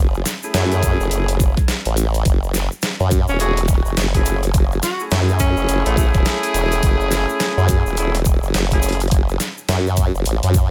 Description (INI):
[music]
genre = glitch hop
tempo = 105 BPM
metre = 4/4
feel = swing 61% on 16ths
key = F# minor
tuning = A4 = 441 Hz
[part]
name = formant-sweep wobble bass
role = bass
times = 0.0-10.7 s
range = E1 to F#2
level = -21 LUFS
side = equal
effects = chorus, tube saturation
[part]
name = tube shaker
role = percussion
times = 0.1-10.7 s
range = none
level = -33 LUFS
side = equal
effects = none
[part]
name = dubstep drum kit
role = drums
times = 0.3-10.5 s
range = hi-hat, snare drum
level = -26 LUFS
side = equal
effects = overdrive
[part]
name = warm horn section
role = stabs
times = 0.4-9.0 s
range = A3 to G#4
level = -26 LUFS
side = equal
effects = sidechain pumping, tape echo
[part]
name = electronic kick drum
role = drums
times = 0.8-10.7 s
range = none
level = -19 LUFS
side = equal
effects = overdrive
[part]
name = warm tenor saxophone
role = melody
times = 3.3-6.1 s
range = A3 to F#4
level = -27 LUFS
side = equal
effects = tape echo
[sound]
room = small room reverb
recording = none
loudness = -18 LUFS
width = mono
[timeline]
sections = 0.0-10.7 A section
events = none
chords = 0.0 F#m9